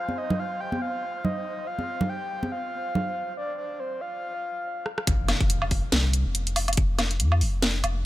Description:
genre	deep dubstep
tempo	141 BPM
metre	4/4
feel	swing 56% on 16ths, half-time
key	unclear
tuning	A4 = 440 Hz
part	breathy flute-like synth lead	melody	0.0-4.9 s	C5 to G5	-32 LUFS	left 1 dB	chorus, dub echo
part	wind-like tuned noise texture	texture	0.0-3.4 s	C5	-41 LUFS	right 5 dB	built-in reverb
part	congas	percussion	0.1-3.0 s	none	-30 LUFS	right 1 dB	none
part	garage drum kit	drums	4.9-7.9 s	hi-hat, rim click, snare drum, woodblock	-26 LUFS	equal	none
part	saturated sub bass	bass	5.1-8.1 s	F1 to F2	-25 LUFS	equal	tube saturation
part	electronic kick drum	drums	5.1-6.9 s	none	-23 LUFS	equal	none
part	impact	sound effects	5.1-6.8 s	none	-32 LUFS	left 1 dB	none
room	digital ambience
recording	none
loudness	-24 LUFS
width	side -16 dB against mid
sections	0.0-5.1 A section; 5.1-8.1 B section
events	break 3.4-5.1; drum fill 4.9; drop 5.1-8.1; impact 5.1-6.8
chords	0.0 F5; 5.1 N.C.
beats	0.39 0.82 1.24 | 1.67 2.10 2.52 2.95 | 3.37 3.80 4.22 4.65 | 5.07 5.50 5.92 6.35 | 6.78 7.20 7.63 8.05

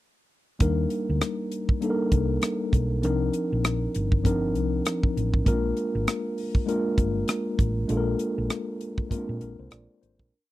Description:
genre	lush 1970s-style soul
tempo	99 BPM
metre	4/4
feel	swing 58% on 16ths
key	unclear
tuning	A4 = 440 Hz
part	mellow tine electric piano	accompaniment	0.6-10.5 s	F3 to D5	-27 LUFS	left 2 dB	slow stereo tremolo
part	hollow-body short-scale fingered electric bass	bass	0.6-10.3 s	G1 to Bb2	-27 LUFS	right 1 dB	none
part	tight funk drum kit	drums	0.6-10.3 s	hi-hat, kick drum, rim click	-24 LUFS	equal	none
room	little or no reverb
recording	dry, close 1970s-style studio recording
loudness	-23 LUFS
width	side -16 dB against mid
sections	0.6-10.3 verse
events	fade-out 7.9-10.3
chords	0.6 Ebmaj7; 3.0 Cm11; 5.5 Bb7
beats	| 0.61 1.21 1.82 2.43 | 3.03 3.64 4.25 4.86 | 5.46 6.07 6.68 7.29 | 7.89 8.50 9.11 9.72

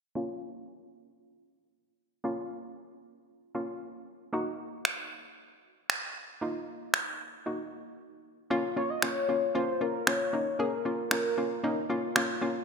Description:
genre	dance-pop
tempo	115 BPM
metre	4/4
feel	straight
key	unclear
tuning	A4 = 440 Hz
part	hollow square pluck	accompaniment	0.2-12.6 s	Bb3 to Ab4	-32 LUFS	left 1 dB	chorus, low-pass filter
part	electronic finger snaps	drums	4.9-12.3 s	none	-29 LUFS	right 2 dB	gated reverb
part	warm velvety synth lead	melody	8.8-11.9 s	Bb4 to Eb5	-31 LUFS	left 1 dB	chorus, ping-pong delay
room	wet plate reverb, RT60 2.1 s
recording	bright 1980s-style digital production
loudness	-29 LUFS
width	side -6 dB against mid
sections	0.2-8.5 A section; 8.5-12.6 B section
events	filter sweep on synth pluck 0.2-8.5; break 7.5-8.5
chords	0.2 Bbm; 4.3 Ebm; 8.2 N.C.; 8.5 Bbm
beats	| 0.16 0.68 1.20 1.72 | 2.25 2.77 3.29 3.81 | 4.33 4.85 5.38 5.90 | 6.42 6.94 7.46 7.98 | 8.51 9.03 9.55 10.07 | 10.59 11.11 11.64 12.16

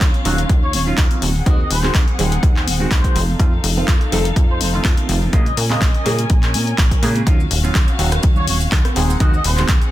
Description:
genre	filtered disco house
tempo	124 BPM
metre	4/4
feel	swing 54% on 16ths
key	Eb dorian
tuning	A4 = 436 Hz
part	clear concert grand piano	accompaniment	0.0-9.7 s	Db3 to A4	-24 LUFS	right 1 dB	phaser, sidechain pumping, low-pass filter
part	dark studio string section	sustained chords	0.0-9.9 s	C4 to Ab5	-27 LUFS	left 1 dB	vintage 12-bit sampler grit, sidechain pumping, low-pass filter
part	plucky analog bass	bass	0.0-9.8 s	Eb1 to Bb2	-20 LUFS	equal	sidechain pumping, low-pass filter
part	electronic kick drum	drums	0.0-9.8 s	none	-15 LUFS	equal	none
part	punchy analog drum machine	drums	0.0-9.9 s	handclaps, hi-hat, rim click	-22 LUFS	left 2 dB	sidechain pumping on hats
part	maracas and congas	percussion	0.0-9.9 s	none	-30 LUFS	right 5 dB	sidechain pumping on perc, low-pass filter on perc
part	muted trumpet section	melody	0.6-9.7 s	C5 to Eb5	-26 LUFS	left 1 dB	sidechain pumping, low-pass filter, digital delay
room	small room ambience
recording	dense, heavily limited modern master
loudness	-14 LUFS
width	side -14 dB against mid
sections	0.0-7.3 A section; 7.3-9.9 B section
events	drop 7.3-9.9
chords	0.0 Ebm9; 1.2 Ab7/Eb; 3.2 F7; 5.3 Bbm7; 7.3 Ebm9; 9.0 Ab7/Eb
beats	0.01 0.49 0.98 | 1.46 1.95 2.43 2.91 | 3.40 3.88 4.37 4.85 | 5.33 5.82 6.30 6.78 | 7.27 7.75 8.24 8.72 | 9.20 9.69

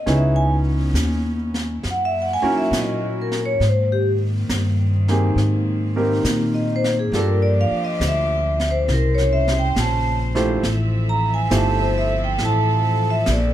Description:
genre	jazz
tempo	68 BPM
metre	4/4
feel	swing 67% on 8ths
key	unclear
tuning	A4 = 437 Hz
part	vibraphone with medium hard mallets	melody	0.0-13.5 s	Gb4 to Bb5	-22 LUFS	equal	none
part	clear baby grand piano	accompaniment	0.0-13.5 s	A3 to C5	-24 LUFS	right 2 dB	none
part	warm studio cello section	sustained chords	0.1-13.5 s	Db3 to E5	-29 LUFS	left 2 dB	none
part	upright bass	bass	0.1-13.5 s	G1 to Bb2	-20 LUFS	equal	none
part	jazz brush drum kit	drums	0.1-13.5 s	brushed snare drum, hi-hat, snare drum	-29 LUFS	right 1 dB	none
room	light reverb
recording	dark, warm production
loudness	-17 LUFS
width	side -12 dB against mid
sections	0.0-13.5 A section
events	vibraphone solo 0.0-13.5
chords	0.1 Dbm7; 1.8 Gb7; 3.6 Abmaj9; 7.1 Gm7; 8.9 C7b9; 10.6 Fmaj7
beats	| 0.06 0.94 1.82 2.71 | 3.60 4.48 5.37 6.25 | 7.13 8.01 8.88 9.76 | 10.63 11.51 12.38 13.26

